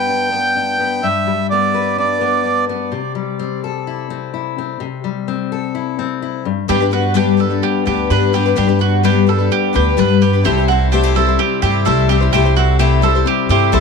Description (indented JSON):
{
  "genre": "indie folk with a building arrangement",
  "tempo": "127 BPM",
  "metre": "4/4",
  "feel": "straight",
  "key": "G major",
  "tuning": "A4 = 440 Hz",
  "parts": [
    { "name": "accordion", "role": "melody", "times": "0.0-2.6 s", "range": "D5 to G5", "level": "-17 LUFS", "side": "right 4 dB", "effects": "tape echo" },
    { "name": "fingerpicked steel-string acoustic guitar", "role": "accompaniment", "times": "0.0-13.8 s", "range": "G2 to B4", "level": "-20 LUFS", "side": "left 10 dB", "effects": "none" },
    { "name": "picked twelve-string acoustic guitar", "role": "accompaniment", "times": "6.7-13.8 s", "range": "G2 to C5", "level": "-16 LUFS", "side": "left 11 dB", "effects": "none" },
    { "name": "bowl-back mandolin", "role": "arpeggios", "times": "6.7-13.8 s", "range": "F#4 to B4", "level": "-18 LUFS", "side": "right 14 dB", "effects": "none" },
    { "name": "upright bass", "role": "bass", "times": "6.7-13.8 s", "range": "C2 to G2", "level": "-16 LUFS", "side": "right 2 dB", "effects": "none" }
  ],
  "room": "light reverb, studio reverb",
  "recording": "1960s-style stereo with parts hard left and right",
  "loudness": "-13 LUFS",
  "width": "side -5 dB against mid",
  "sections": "0.0-6.7 A section; 6.7-13.8 B section",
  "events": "build-up 6.7-13.8",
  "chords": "0.0 G; 2.9 C6; 6.5 N.C.; 6.7 G; 10.5 C6"
}